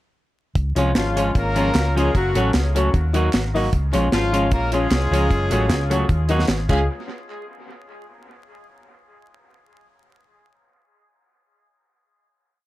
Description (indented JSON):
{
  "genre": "ska",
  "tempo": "152 BPM",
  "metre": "4/4",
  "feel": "straight",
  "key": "Db major",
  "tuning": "A4 = 440 Hz",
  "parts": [
    { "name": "hollow-body short-scale fingered electric bass", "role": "bass", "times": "0.6-6.9 s", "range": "Gb1 to Eb2", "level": "-21 LUFS", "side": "equal", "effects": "none" },
    { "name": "deep reggae drum kit", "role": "drums", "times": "0.6-6.8 s", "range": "crash cymbal, hi-hat, kick drum, snare drum", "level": "-23 LUFS", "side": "equal", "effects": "dub echo" },
    { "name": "semi-hollow electric guitar", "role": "accompaniment", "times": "0.8-6.8 s", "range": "F3 to Ab4", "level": "-25 LUFS", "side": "right 2 dB", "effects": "none" },
    { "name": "dark upright piano", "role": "stabs", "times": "0.8-6.8 s", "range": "Db4 to F5", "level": "-25 LUFS", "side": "left 4 dB", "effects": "none" },
    { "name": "mellow horn section", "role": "melody", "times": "1.0-6.9 s", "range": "F3 to Bb4", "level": "-25 LUFS", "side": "left 1 dB", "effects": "dub echo" },
    { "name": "group handclap", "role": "percussion", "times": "1.0-6.9 s", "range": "none", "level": "-39 LUFS", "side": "right 2 dB", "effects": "none" }
  ],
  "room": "light reverb",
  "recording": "vinyl crackle",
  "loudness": "-17 LUFS",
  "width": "side -16 dB against mid",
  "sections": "0.6-6.9 head; 6.9-8.5 final hit",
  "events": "none",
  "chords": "0.6 Db; 2.1 Gbm; 2.9 Ebm; 3.7 Db; 5.3 Gbm; 6.1 Ebm; 6.5 N.C.; 6.7 Db; 6.9 N.C.",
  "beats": "| 0.56 0.95 1.35 1.75 | 2.14 2.54 2.94 3.33 | 3.73 4.12 4.51 4.91 | 5.30 5.70 6.09 6.49"
}